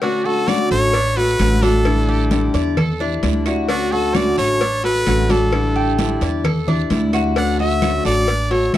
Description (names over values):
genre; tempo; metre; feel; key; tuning
latin, Cuban son and guajira; 131 BPM; 4/4; straight; D major; A4 = 435 Hz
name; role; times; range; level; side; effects
brilliant trumpet; melody; 0.0-8.8 s; F#4 to F#5; -21 LUFS; right 1 dB; none
picked acoustic archtop guitar; accompaniment; 0.0-8.8 s; D3 to F#4; -20 LUFS; left 2 dB; none
Cuban tres; arpeggios; 0.0-8.8 s; D4 to D5; -25 LUFS; right 1 dB; none
congas; percussion; 0.0-8.8 s; none; -24 LUFS; left 1 dB; none
cowbell; percussion; 0.0-8.8 s; none; -28 LUFS; left 6 dB; none
guiro; percussion; 0.0-8.8 s; none; -34 LUFS; right 16 dB; none
claves; percussion; 0.5-8.8 s; none; -32 LUFS; right 16 dB; none
upright bass; bass; 0.7-8.8 s; A1 to E2; -20 LUFS; right 1 dB; none
room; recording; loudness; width
little or no reverb; dry, close 1970s-style studio recording; -15 LUFS; side -13 dB against mid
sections
0.0-8.8 A section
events
none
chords
0.0 Dmaj7; 1.9 A7sus4; 3.7 Dmaj7; 5.5 A7sus4; 7.4 Dmaj7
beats
| 0.02 0.48 0.94 1.40 | 1.86 2.32 2.77 3.23 | 3.69 4.15 4.61 5.07 | 5.53 5.99 6.44 6.90 | 7.36 7.82 8.28 8.74